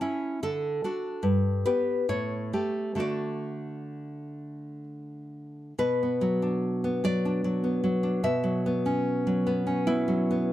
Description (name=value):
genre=romantic piece for solo classical guitar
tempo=62-75 BPM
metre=3/4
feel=rubato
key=D major, B minor from 5.8 s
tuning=A4 = 440 Hz
part: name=nylon-string guitar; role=solo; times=0.0-10.5 s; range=G2 to A5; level=-26 LUFS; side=equal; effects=none
room=light reverb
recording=dark, warm production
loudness=-25 LUFS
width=side -14 dB against mid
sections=0.0-5.8 A section; 5.8-10.5 B section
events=none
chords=0.4 D; 1.3 G; 2.1 A7; 3.0 D; 5.8 Bm; 8.2 F#5/B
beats=| 0.44 1.26 2.10 | 3.00 3.96 4.88 | 5.79 6.63 7.44 | 8.24 9.07 9.89